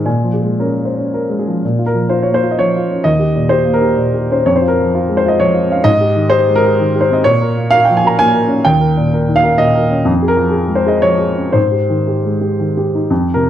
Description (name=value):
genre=neoclassical minimalist piano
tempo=112-131 BPM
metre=3/4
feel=rubato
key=Bb dorian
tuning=A4 = 442 Hz
part: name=warm baby grand piano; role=solo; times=0.0-13.5 s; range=Eb2 to Bb5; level=-11 LUFS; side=equal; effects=slapback echo
room=light reverb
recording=dry, close 1970s-style studio recording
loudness=-11 LUFS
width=side -10 dB against mid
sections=0.0-1.6 A section; 1.6-13.1 B section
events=none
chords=0.1 Bbm7; 1.6 Bbm; 3.1 Eb; 4.5 Db/F; 5.9 Abmaj7; 7.3 Bbm; 8.7 Eb7; 10.1 Db/F; 11.6 Abmaj7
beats=| 0.06 0.59 1.11 | 1.62 2.11 2.58 | 3.05 3.52 3.99 | 4.46 4.93 5.40 | 5.86 6.33 6.79 | 7.26 7.73 8.20 | 8.66 9.13 9.61 | 10.09 10.56 11.05 | 11.56 12.08 12.60 | 13.10